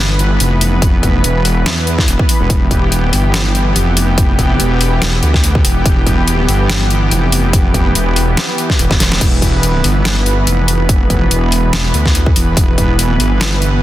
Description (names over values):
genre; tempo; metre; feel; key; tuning
heavy wobble dubstep; 143 BPM; 4/4; swing 55% on 16ths, half-time; E phrygian; A4 = 439 Hz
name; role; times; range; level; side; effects
lush unison pad; sustained chords; 0.0-13.8 s; E3 to B4; -18 LUFS; right 1 dB; chorus, sidechain pumping
wobble bass; bass; 0.0-13.8 s; E1 to E2; -14 LUFS; equal; chorus, overdrive
dubstep drum kit; drums; 0.2-13.7 s; crash cymbal, hi-hat, snare drum; -17 LUFS; left 1 dB; overdrive
electronic kick drum; drums; 0.8-12.9 s; none; -13 LUFS; equal; none
room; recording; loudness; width
digital ambience; dense, heavily limited modern master; -10 LUFS; side -14 dB against mid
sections
0.0-13.8 A section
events
drum fill 8.9-9.2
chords
0.0 E5